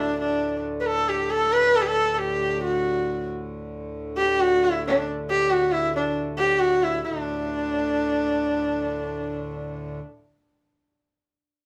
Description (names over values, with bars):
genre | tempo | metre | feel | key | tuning
indian classical, Hindustani | 136 BPM | 5/4 | straight | D raga bilaval | A4 = 440 Hz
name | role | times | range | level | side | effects
rich sarangi | melody | 0.0-10.0 s | D4 to B4 | -24 LUFS | equal | none
pedal harmonium | drone | 0.0-10.0 s | D2 to A2 | -34 LUFS | equal | none
room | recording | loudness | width
wet studio ambience, RT60 0.5 s | band playing live in one room | -24 LUFS | mono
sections
0.0-7.0 A section; 7.0-9.2 B section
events
speeding up 0.0-9.2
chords
none